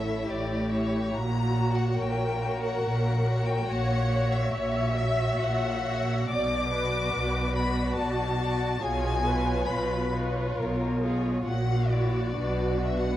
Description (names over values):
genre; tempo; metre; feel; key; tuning
classical, slow romantic movement for string orchestra; 70 BPM; 3/4; uneven beats, rubato; unclear; A4 = 442 Hz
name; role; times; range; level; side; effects
rich chamber violin section; melody; 0.0-13.2 s; C#5 to D6; -33 LUFS; left 4 dB; none
rich chamber violin section; second line; 0.0-13.2 s; D4 to D5; -33 LUFS; left 1 dB; none
rich studio viola section; accompaniment; 0.0-13.2 s; F#4 to E5; -32 LUFS; equal; none
clear chamber cello section; bass; 0.0-13.2 s; A2 to B2; -30 LUFS; equal; none
clear chamber double bass section; bass; 0.0-13.2 s; A1 to B1; -31 LUFS; right 1 dB; none
room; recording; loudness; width
moderate scoring stage reverb, RT60 1.7 s; dark, warm production, vinyl crackle; -25 LUFS; side -13 dB against mid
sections
0.0-13.2 A section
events
none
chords
0.0 A; 1.2 F#/A#; 6.3 Bm; 8.8 C#7/B; 11.5 F#7/A#; 12.4 Bm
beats
0.29 | 1.15 2.00 2.83 | 3.68 4.54 5.39 | 6.29 7.14 7.97 | 8.82 9.69 10.58 | 11.46 12.37